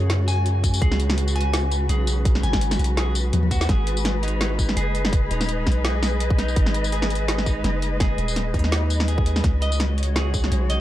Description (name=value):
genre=half-time drum and bass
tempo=167 BPM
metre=4/4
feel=swing 55% on 16ths, half-time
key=G# minor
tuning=A4 = 440 Hz
part: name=dark symphonic cello section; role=sustained chords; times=0.0-10.8 s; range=C#3 to D#5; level=-29 LUFS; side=left 2 dB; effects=sidechain pumping
part: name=clean electric guitar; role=arpeggios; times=0.0-10.8 s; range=D#4 to G#5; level=-30 LUFS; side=right 2 dB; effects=spring reverb, tape echo
part: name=long sustained 808-style bass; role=bass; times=0.0-10.8 s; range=D#1 to F#2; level=-22 LUFS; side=equal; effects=none
part: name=drum and bass drum kit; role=drums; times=0.1-10.8 s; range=hi-hat, snare drum, tambourine, toms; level=-26 LUFS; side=equal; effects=none
part: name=electronic kick drum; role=drums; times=0.6-10.4 s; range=none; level=-22 LUFS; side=equal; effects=none
room=little or no reverb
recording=dark, warm production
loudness=-19 LUFS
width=side -14 dB against mid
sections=0.0-3.7 A section; 3.7-10.8 A section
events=drop 0.0-3.7, 3.7-10.8; drum fill 3.3-3.7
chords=0.0 C#sus4; 3.7 G#m; 9.4 C#sus4